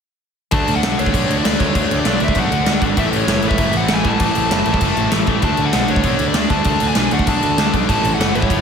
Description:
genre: punk rock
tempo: 196 BPM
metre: 4/4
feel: straight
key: unclear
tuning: A4 = 440 Hz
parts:
  - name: high-gain lead guitar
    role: melody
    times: 0.5-8.6 s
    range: C#5 to A5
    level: -22 LUFS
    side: equal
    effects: distortion, slapback echo, tape echo
  - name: overdriven electric guitar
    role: riff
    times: 0.5-8.6 s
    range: A2 to D4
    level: -23 LUFS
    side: right 9 dB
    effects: slapback echo
  - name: tight distorted guitar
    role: riff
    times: 0.5-8.6 s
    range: A2 to D4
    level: -21 LUFS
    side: left 10 dB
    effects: distortion, slapback echo
  - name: fuzz picked electric bass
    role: bass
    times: 0.5-8.6 s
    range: F#1 to D2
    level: -22 LUFS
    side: equal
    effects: overdrive
  - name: big rock drum kit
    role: drums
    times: 0.5-8.6 s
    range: crash cymbal, kick drum, snare drum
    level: -18 LUFS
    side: equal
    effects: none
room: moderate concert hall reverb, RT60 1.9 s, studio ambience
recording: big arena sound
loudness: -14 LUFS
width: side -7 dB against mid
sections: 0.5-8.6 A section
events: none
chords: 0.5 D; 3.0 A5; 5.4 D5; 7.9 A

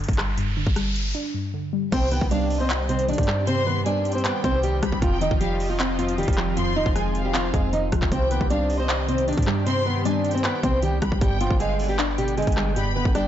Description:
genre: hip hop, trap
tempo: 155 BPM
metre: 4/4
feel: half-time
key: C harmonic minor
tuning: A4 = 440 Hz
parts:
  - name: warbly dusty pluck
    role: accompaniment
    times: 0.0-13.3 s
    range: F2 to C5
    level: -29 LUFS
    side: equal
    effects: chorus, low-pass filter
  - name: clean 808-style bass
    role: bass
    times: 0.0-13.3 s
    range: Eb1 to G2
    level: -26 LUFS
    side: equal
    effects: none
  - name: trap drum kit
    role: drums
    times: 0.0-13.2 s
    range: crash cymbal, handclaps, hi-hat, kick drum, rim click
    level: -26 LUFS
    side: equal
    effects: overdrive
  - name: riser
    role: sound effects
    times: 0.0-1.1 s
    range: none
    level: -32 LUFS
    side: equal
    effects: none
  - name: fingerpicked swing-style acoustic guitar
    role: melody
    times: 1.9-13.3 s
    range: F3 to Eb5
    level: -25 LUFS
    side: right 1 dB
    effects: low-pass filter, tape echo
  - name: warm symphonic violin section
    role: second line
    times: 1.9-13.3 s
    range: D5 to C6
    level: -33 LUFS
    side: left 1 dB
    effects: tape echo
  - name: warm analog pad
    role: sustained chords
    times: 1.9-13.3 s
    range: D3 to G5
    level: -31 LUFS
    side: left 1 dB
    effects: chorus
room: light reverb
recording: blown-out, overdriven recording, overdrive, nothing above 7.7 kHz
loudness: -20 LUFS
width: side -11 dB against mid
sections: 0.0-1.9 A section; 1.9-13.3 B section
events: riser 0.0-1.9; break 1.1-1.9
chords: 0.0 G5; 1.9 Cm; 5.0 Fm7; 8.1 Cm; 11.2 G

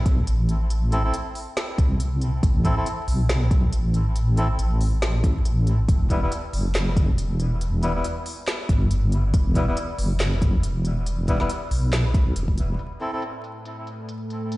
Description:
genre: deep dubstep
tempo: 139 BPM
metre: 4/4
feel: swing 56% on 16ths, half-time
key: unclear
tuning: A4 = 440 Hz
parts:
  - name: deep soft wobble bass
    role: bass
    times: 0.0-12.8 s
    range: E1 to C2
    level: -21 LUFS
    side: equal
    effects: chorus
  - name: deep house drum kit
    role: drums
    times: 0.1-14.6 s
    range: handclaps, hi-hat, snare drum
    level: -31 LUFS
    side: equal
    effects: low-pass filter on hats, studio reverb, low-pass filter on cymbals, low-pass filter on snare
  - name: electronic kick drum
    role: drums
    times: 0.1-12.6 s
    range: none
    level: -21 LUFS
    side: equal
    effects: studio reverb
  - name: melodica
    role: stabs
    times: 0.9-13.2 s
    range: G3 to A4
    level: -31 LUFS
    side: left 1 dB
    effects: dub echo
  - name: deep dark ambient pad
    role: sustained chords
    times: 13.4-14.6 s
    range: A3 to A4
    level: -33 LUFS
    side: equal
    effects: chorus, built-in reverb
room: digital ambience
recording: played on a big sound system in a bare room, large studio reverb, vinyl crackle, nothing above 10.9 kHz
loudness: -20 LUFS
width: side -19 dB against mid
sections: 0.0-12.8 A section; 12.8-14.6 B section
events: filter sweep on drum 12.8-14.6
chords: 0.0 Am; 5.9 Em; 12.8 N.C.

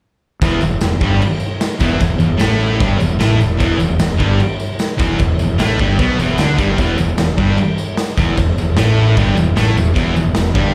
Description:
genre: garage rock duo or trio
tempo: 151 BPM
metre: 4/4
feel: straight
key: unclear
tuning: A4 = 441 Hz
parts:
  - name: thick fuzz guitar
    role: riff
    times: 0.4-10.7 s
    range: E2 to D4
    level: -18 LUFS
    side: equal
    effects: distortion, slapback echo
  - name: fuzz fingered electric bass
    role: bass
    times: 0.4-10.7 s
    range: E1 to D2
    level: -21 LUFS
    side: equal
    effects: overdrive
  - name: raw garage drum kit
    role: drums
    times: 0.4-10.6 s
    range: crash cymbal, kick drum, snare drum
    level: -21 LUFS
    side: equal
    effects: none
  - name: tambourine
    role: percussion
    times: 0.4-10.6 s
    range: none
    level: -39 LUFS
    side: equal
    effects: none
room: small room ambience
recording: live gig heard through the venue's PA, club reverb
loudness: -15 LUFS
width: mono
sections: 0.4-10.7 A section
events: none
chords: 0.4 E5

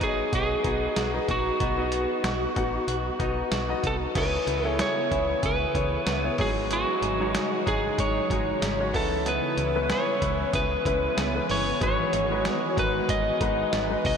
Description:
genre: 1980s-style pop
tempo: 94 BPM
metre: 4/4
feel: swing 55% on 16ths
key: unclear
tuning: A4 = 441 Hz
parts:
  - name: lightly driven lead guitar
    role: melody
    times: 0.0-14.2 s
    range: F#4 to D#5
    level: -27 LUFS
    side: equal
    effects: ping-pong delay
  - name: clear baby grand piano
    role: accompaniment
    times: 0.0-14.2 s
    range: G#3 to F#5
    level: -30 LUFS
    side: left 3 dB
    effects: none
  - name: direct-recorded clean electric guitar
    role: riff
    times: 0.0-14.2 s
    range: F#3 to G#4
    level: -34 LUFS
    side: right 4 dB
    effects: wide subtle chorus, ping-pong delay
  - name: solid FM bass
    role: bass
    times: 0.0-14.2 s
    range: G1 to C#2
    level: -32 LUFS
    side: equal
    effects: none
  - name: lo-fi sampler-style drum kit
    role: drums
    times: 0.0-14.2 s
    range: crash cymbal, hi-hat, kick drum, snare drum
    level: -31 LUFS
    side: equal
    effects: none
  - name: phased analog pad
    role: sustained chords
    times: 4.7-14.2 s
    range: C#3 to F#4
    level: -33 LUFS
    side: right 1 dB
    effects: phaser, chorus
room: wet huge ambient reverb, RT60 7.9 s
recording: dreamy mix soaked in reverb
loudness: -23 LUFS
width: side -6 dB against mid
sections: 0.0-4.2 A section; 4.2-14.2 B section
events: none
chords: 0.0 B; 4.2 C#m7; 6.4 G#7sus4; 8.9 C#m7; 11.8 G#m7

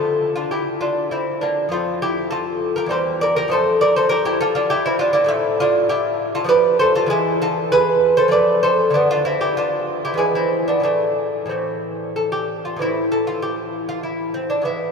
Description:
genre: classical, baroque-style dance for lute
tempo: 99 BPM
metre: 3/4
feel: rubato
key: A minor from 5.3 s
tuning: A4 = 440 Hz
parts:
  - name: lute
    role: solo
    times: 0.0-14.9 s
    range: E2 to D5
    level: -17 LUFS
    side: equal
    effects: none
room: wet cathedral reverb, RT60 6.0 s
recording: recorded in a church or concert hall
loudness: -17 LUFS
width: side -5 dB against mid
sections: 0.0-12.8 A section; 12.8-14.9 B section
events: none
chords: 0.0 Dm; 1.7 F; 2.9 C7/E; 3.5 F; 5.3 Am; 6.5 Dm/F; 7.1 E; 8.3 F; 9.0 Dmadd9; 10.2 E; 10.8 Am

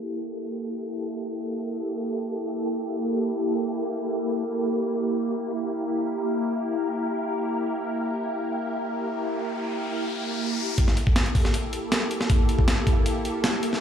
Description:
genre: drum and bass, jungle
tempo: free time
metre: none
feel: none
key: G dorian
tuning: A4 = 438 Hz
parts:
  - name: soft string machine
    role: sustained chords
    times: 0.0-13.8 s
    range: Bb3 to Bb4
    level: -26 LUFS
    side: equal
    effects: phaser, ensemble chorus
  - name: riser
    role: sound effects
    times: 8.6-10.8 s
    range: none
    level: -35 LUFS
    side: left 3 dB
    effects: none
  - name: breakbeat sampler-style drum kit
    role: drums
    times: 10.8-13.8 s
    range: hi-hat, kick drum, snare drum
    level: -21 LUFS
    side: equal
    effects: studio reverb
room: moderate plate reverb, RT60 1.5 s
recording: played on a big sound system in a bare room, stone room reverb, low-pass filter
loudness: -24 LUFS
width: side -8 dB against mid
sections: 0.0-10.8 A section; 10.8-13.8 B section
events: filter sweep on string machine 0.0-10.8; filter sweep 0.0-10.8; riser 8.6-10.8; build-up 10.8-13.8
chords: 0.0 Gm69

